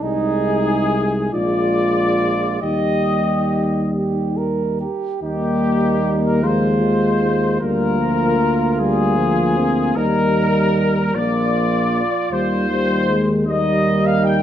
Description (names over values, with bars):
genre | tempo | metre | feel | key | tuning
classical, hymn-like piece for brass band | 44-52 BPM (dotted quarters) | 6/8 | rubato | Eb major | A4 = 440 Hz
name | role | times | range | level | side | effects
warm trumpet section | melody | 0.0-14.4 s | G4 to G5 | -22 LUFS | left 4 dB | none
mellow flugelhorn | second line | 0.0-14.4 s | Eb4 to Bb4 | -24 LUFS | right 7 dB | none
dark euphonium | accompaniment | 0.0-14.4 s | F3 to F4 | -22 LUFS | left 3 dB | none
dark trombone | accompaniment | 0.0-14.4 s | Eb3 to Bb3 | -23 LUFS | right 2 dB | none
warm tuba | bass | 0.0-14.4 s | Bb1 to Eb2 | -22 LUFS | equal | none
room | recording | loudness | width
moderate recital hall reverb, RT60 1.5 s | none | -16 LUFS | side -10 dB against mid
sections
0.0-5.2 A section; 5.2-14.4 A section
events
none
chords
0.0 Ab/C; 1.3 Bb7; 2.6 Eb; 6.4 Fm7/Eb; 7.6 Bb7/D; 10.0 Eb; 11.1 Bb; 12.3 Eb